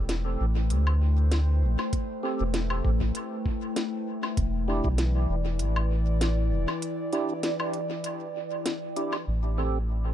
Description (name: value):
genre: ambient dub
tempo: 98 BPM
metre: 4/4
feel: swing 54% on 16ths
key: A minor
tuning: A4 = 441 Hz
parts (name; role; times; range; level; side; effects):
- warbly tape-like pad; sustained chords; 0.0-10.1 s; E3 to G5; -32 LUFS; left 2 dB; chorus, built-in reverb, phaser
- soft dub sub bass; bass; 0.0-10.1 s; E1 to D2; -24 LUFS; equal; tube saturation
- organic electronic drum kit; drums; 0.1-9.2 s; hi-hat, snare drum, woodblock; -34 LUFS; left 1 dB; low-pass filter on hats, low-pass filter on snare, low-pass filter on perc, dub echo
- electronic kick drum; drums; 1.9-5.0 s; none; -29 LUFS; equal; none
- tonewheel organ; stabs; 2.2-9.8 s; C4 to A4; -34 LUFS; right 3 dB; overdrive, chorus vibrato, slow rotary speaker, dub echo
room: little or no reverb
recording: echo-heavy mix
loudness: -25 LUFS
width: side -11 dB against mid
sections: 0.0-9.3 A section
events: break 6.8-9.3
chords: 0.0 Am7; 4.4 Em7; 9.3 Am7